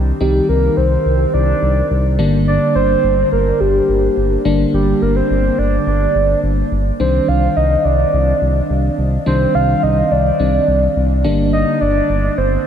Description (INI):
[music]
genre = pop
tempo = 106 BPM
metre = 4/4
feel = straight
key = C minor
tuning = A4 = 440 Hz
[part]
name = FM electric piano with soft pad layer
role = accompaniment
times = 0.0-12.7 s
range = D3 to Eb4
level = -19 LUFS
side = left 1 dB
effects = chorus
[part]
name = smooth gliding synth bass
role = bass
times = 0.0-12.6 s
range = G1 to C2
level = -17 LUFS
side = equal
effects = none
[part]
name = soft octave-layered synth lead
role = melody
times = 0.2-12.7 s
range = G4 to F5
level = -16 LUFS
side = right 1 dB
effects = chorus, phaser, ping-pong delay
[sound]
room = wet cathedral reverb, RT60 6.0 s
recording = dreamy mix soaked in reverb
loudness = -13 LUFS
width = side -8 dB against mid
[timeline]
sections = 0.0-12.7 A section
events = none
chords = 0.0 Cmadd9; 2.2 Gm; 7.0 Cmadd9; 11.2 Gm